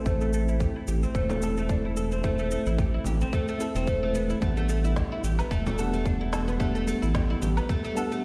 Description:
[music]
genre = organic downtempo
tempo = 110 BPM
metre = 4/4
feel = swing 55% on 16ths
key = A dorian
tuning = A4 = 437 Hz
[part]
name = bright tine electric piano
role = accompaniment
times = 0.0-8.2 s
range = G3 to F#5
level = -34 LUFS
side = equal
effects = medium tremolo, sidechain pumping, digital delay
[part]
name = oud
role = arpeggios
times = 0.0-8.2 s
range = A3 to A4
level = -33 LUFS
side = equal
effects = low-pass filter, digital delay
[part]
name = round analog bass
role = bass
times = 0.1-7.6 s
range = E1 to A1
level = -30 LUFS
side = equal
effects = sidechain pumping
[part]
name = electronic kick drum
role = drums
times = 0.1-7.8 s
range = none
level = -31 LUFS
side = equal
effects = overdrive
[part]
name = electronic shaker, snare drum and woodblock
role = drums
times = 0.1-8.2 s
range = none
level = -42 LUFS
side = equal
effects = overdrive
[part]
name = frame drum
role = percussion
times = 1.3-7.5 s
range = none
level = -39 LUFS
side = equal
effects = none
[sound]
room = light reverb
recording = played on a big sound system in a bare room, stone room reverb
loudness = -27 LUFS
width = mono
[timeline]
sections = 0.0-8.2 A section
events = filter sweep on oud 0.0-8.2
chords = 0.0 Am; 4.4 Em7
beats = | 0.06 0.60 1.15 1.69 | 2.24 2.79 3.33 3.88 | 4.42 4.97 5.51 6.06 | 6.60 7.15 7.69 8.24

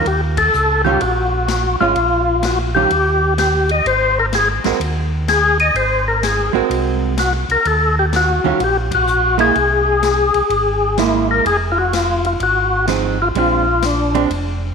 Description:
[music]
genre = soul jazz organ trio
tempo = 126 BPM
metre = 4/4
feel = swing 66% on 8ths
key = unclear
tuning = A4 = 436 Hz
[part]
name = percussive tonewheel organ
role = melody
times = 0.0-14.3 s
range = D4 to Eb5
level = -15 LUFS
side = left 2 dB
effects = slow rotary speaker, overdrive, chorus vibrato, tape echo
[part]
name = archtop guitar, miked and amplified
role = accompaniment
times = 0.0-14.3 s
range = Eb3 to Bb4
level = -21 LUFS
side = right 11 dB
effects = none
[part]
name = mellow tonewheel organ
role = bass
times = 0.0-14.7 s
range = F1 to Eb2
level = -21 LUFS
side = right 1 dB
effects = slow rotary speaker
[part]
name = swinging big-band drum kit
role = drums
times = 0.1-14.4 s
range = hi-hat, kick drum, ride cymbal, snare drum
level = -28 LUFS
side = left 6 dB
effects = none
[sound]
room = moderate echo chamber reverb, RT60 1.8 s, small room ambience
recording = 1960s-style stereo with parts hard left and right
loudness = -14 LUFS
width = side -5 dB against mid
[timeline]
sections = 0.0-14.7 A section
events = band accent 0.3, 8.8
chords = 0.1 Eb9; 2.0 Bbm; 2.9 Eb; 3.9 Ab9; 7.7 Eb; 9.6 Caug7; 11.5 Fm7; 13.4 Bb9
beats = | 0.06 0.53 1.01 1.48 | 1.96 2.43 2.90 3.38 | 3.85 4.33 4.80 5.28 | 5.75 6.22 6.70 7.17 | 7.65 8.13 8.60 9.08 | 9.55 10.03 10.50 10.98 | 11.45 11.93 12.40 12.88 | 13.35 13.83 14.30

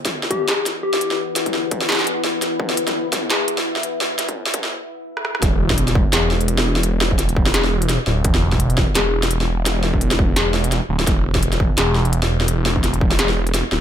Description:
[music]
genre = half-time drum and bass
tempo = 170 BPM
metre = 4/4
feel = swing 57% on 16ths, half-time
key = E minor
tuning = A4 = 441 Hz
[part]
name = deep dark ambient pad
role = sustained chords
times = 0.6-4.7 s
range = E4 to F#5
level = -26 LUFS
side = left 3 dB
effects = chorus, built-in reverb, sidechain pumping
[part]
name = electronic kick drum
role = drums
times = 0.1-13.1 s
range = none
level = -21 LUFS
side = equal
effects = distortion, overdrive, high-pass filter on kick, high-pass filter on room
[part]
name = industrial drum kit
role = drums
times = 0.1-13.8 s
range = hi-hat, rim click, snare drum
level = -20 LUFS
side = equal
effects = overdrive, high-pass filter on hats, high-pass filter on snare, high-pass filter on room
[part]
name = soft struck synth lead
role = melody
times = 0.3-1.2 s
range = G4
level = -23 LUFS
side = left 4 dB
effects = chorus, ping-pong delay
[part]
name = phased detuned saw bass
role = bass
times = 5.4-13.8 s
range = D1 to E1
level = -19 LUFS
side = equal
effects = phaser
[sound]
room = little or no reverb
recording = high-pass filter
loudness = -16 LUFS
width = side -9 dB against mid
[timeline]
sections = 0.0-5.4 A section; 5.4-13.8 B section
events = build-up 0.0-5.4; break 4.7-5.4; drum fill 5.2; drop 5.4-13.8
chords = 0.0 E5; 5.4 N.C.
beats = 0.13 0.48 0.83 | 1.19 1.54 1.89 2.25 | 2.60 2.95 3.31 3.66 | 4.01 4.36 4.72 5.07 | 5.42 5.78 6.13 6.48 | 6.83 7.19 7.54 7.89 | 8.25 8.60 8.95 9.31 | 9.66 10.01 10.36 10.72 | 11.07 11.42 11.78 12.13 | 12.48 12.84 13.19 13.54

